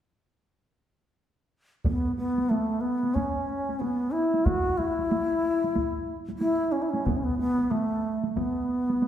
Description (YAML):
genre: japanese traditional, taiko drum ensemble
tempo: 92 BPM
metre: 4/4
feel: swing 60% on 16ths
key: B suspended pentatonic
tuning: A4 = 439 Hz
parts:
  - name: taiko ensemble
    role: percussion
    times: 1.8-8.6 s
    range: none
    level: -31 LUFS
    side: equal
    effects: none
  - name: breathy bright long shakuhachi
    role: melody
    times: 1.9-9.1 s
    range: A3 to F#4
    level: -25 LUFS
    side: equal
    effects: none
  - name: taiko ensemble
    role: percussion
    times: 1.9-9.1 s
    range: none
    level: -33 LUFS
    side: right 2 dB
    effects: none
room: wet recital hall reverb, RT60 1.6 s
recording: recorded in a church or concert hall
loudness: -24 LUFS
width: side -10 dB against mid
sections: 1.9-9.1 A section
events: none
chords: none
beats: | 1.85 2.51 3.16 3.81 | 4.46 5.12 5.77 6.42 | 7.07 7.72 8.37 9.02